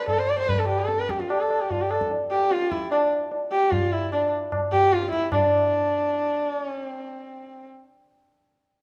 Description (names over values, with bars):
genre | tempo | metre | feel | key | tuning
indian classical, Hindustani | 149 BPM | 4/4 | straight | D raga kafi | A4 = 440 Hz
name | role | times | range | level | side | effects
dark sarangi | melody | 0.0-7.7 s | D4 to D5 | -26 LUFS | equal | none
tabla | percussion | 0.1-5.5 s | none | -28 LUFS | equal | none
room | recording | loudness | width
moderate recital hall reverb, RT60 1.5 s | none | -24 LUFS | mono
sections
0.0-5.3 A section; 5.3-6.9 B section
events
speeding up 0.0-6.9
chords
none